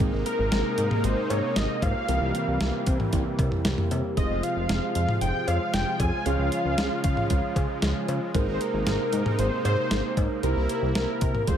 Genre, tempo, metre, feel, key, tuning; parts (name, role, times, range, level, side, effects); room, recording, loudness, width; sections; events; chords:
synth-pop; 115 BPM; 4/4; straight; A4 = 438 Hz
muted felt-like synth keys; accompaniment; 0.0-11.6 s; E3 to Db5; -32 LUFS; right 4 dB; chorus, analog delay
brassy analog pad; sustained chords; 0.0-11.6 s; C3 to F4; -32 LUFS; equal; chorus
chorused synth bass; bass; 0.0-11.6 s; F1 to Db3; -27 LUFS; equal
detuned 8-bit digital drum machine; drums; 0.0-11.6 s; cowbell, hi-hat, kick drum, snare drum, toms; -28 LUFS; equal; analog delay
wide unison lead; melody; 0.3-11.6 s; Bb4 to Ab5; -29 LUFS; equal; analog delay
moderate spring reverb, RT60 1.5 s; echo-heavy mix; -23 LUFS; side -9 dB against mid
0.0-11.6 A section
0.0 Abadd9; 2.1 C7; 4.2 Fm; 6.3 Db; 8.3 Abadd9; 10.4 C7